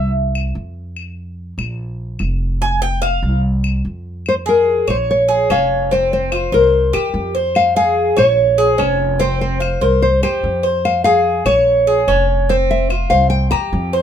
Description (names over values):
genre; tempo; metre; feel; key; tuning
latin, Cuban son and guajira; 146 BPM; 4/4; straight; F harmonic minor from 4.3 s; A4 = 443 Hz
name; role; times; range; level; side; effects
Cuban tres; arpeggios; 0.0-0.1, 2.6-14.0 s; C4 to Ab5; -18 LUFS; equal; none
upright bass; bass; 0.0-14.0 s; F1 to F2; -20 LUFS; right 1 dB; none
claves; percussion; 0.4-13.7 s; none; -27 LUFS; left 6 dB; none
nylon-string guitar; melody; 4.3-13.9 s; Bb4 to Bb5; -15 LUFS; left 1 dB; none
room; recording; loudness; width
light reverb; minimal, uncompressed stereo recording; -13 LUFS; side -9 dB against mid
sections
0.0-4.3 A section; 4.3-14.0 B section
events
Cuban tres solo 0.0-4.3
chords
0.1 Csus4; 1.0 Bb5; 2.6 F5; 3.4 Csus4; 4.3 Fm; 5.1 Bbm7; 5.9 F5; 6.7 C7; 7.6 Fm; 8.4 Bbm7; 9.2 F5; 10.0 C; 10.8 Fm; 11.7 Bbm7; 12.5 F5; 13.3 C7